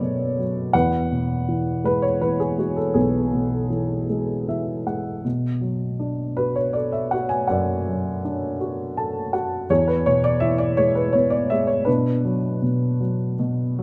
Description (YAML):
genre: classical, lyrical solo piano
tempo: 54 BPM (dotted quarters)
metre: 6/8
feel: uneven beats, rubato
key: B dorian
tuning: A4 = 440 Hz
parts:
  - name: dark upright piano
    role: solo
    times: 0.0-13.8 s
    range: B1 to A5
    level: -22 LUFS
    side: equal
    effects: none
room: light reverb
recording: close, detailed microphones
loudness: -22 LUFS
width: mono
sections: 0.0-13.8 A section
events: upright piano fill 4.1-5.2, 8.6-9.7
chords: 0.0 Bm7; 0.7 Eadd9; 5.2 Bm7; 9.7 E; 11.9 Bm